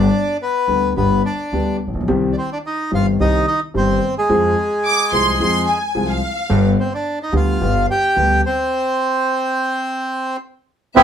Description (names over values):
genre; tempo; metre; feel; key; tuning
tango; 108 BPM; 4/4; rubato; unclear; A4 = 440 Hz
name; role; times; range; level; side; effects
bandoneon; melody; 0.0-10.4 s; Ab3 to G5; -18 LUFS; equal; none
clear concert grand piano; accompaniment; 0.0-11.0 s; G1 to Ab4; -19 LUFS; left 2 dB; none
upright bass; bass; 0.0-11.0 s; G1 to F2; -22 LUFS; right 1 dB; none
warm studio violin section; second line; 4.8-6.6, 11.0 s; E5 to D6; -19 LUFS; right 1 dB; none
bandoneon; stabs; 11.0 s; B3 to E4; -5 LUFS; right 1 dB; none
room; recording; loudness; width
moderate studio reverb, RT60 0.6 s; heard from further back in the room; -16 LUFS; side -8 dB against mid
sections
0.0-11.0 A section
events
stop 8.7-11.0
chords
0.0 G; 2.1 Cm; 4.3 Fm; 6.5 G; 8.7 N.C.